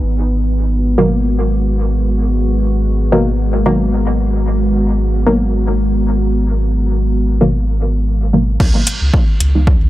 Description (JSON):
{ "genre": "dub techno", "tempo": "112 BPM", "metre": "4/4", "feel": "swing 55% on 16ths", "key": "unclear", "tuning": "A4 = 439 Hz", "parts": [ { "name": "deep dark ambient pad", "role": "sustained chords", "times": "0.0-9.9 s", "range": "G#3 to F#4", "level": "-20 LUFS", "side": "equal", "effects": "chorus, built-in reverb, sidechain pumping" }, { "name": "warm sub bass", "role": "bass", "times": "0.0-9.9 s", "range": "G#1 to C#2", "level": "-15 LUFS", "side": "equal", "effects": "sidechain pumping" }, { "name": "filtered dub chord stab", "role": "stabs", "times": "1.0-9.8 s", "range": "B2 to D#4", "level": "-18 LUFS", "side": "equal", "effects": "chorus, phaser, sidechain pumping, dub echo" }, { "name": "deep house drum kit", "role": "drums", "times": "8.6-9.5 s", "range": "crash cymbal, hi-hat", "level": "-22 LUFS", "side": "right 1 dB", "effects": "overdrive, small room ambience" }, { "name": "electronic kick drum", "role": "drums", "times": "8.6-9.8 s", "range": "none", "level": "-12 LUFS", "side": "equal", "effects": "overdrive, small room ambience" } ], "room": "digital ambience", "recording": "dry, gritty hardware recording", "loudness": "-12 LUFS", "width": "side -15 dB against mid", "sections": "0.0-8.6 A section; 8.6-9.9 B section", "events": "filter sweep on synth stab 0.0-8.6", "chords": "0.0 G#m7; 8.6 C#m7" }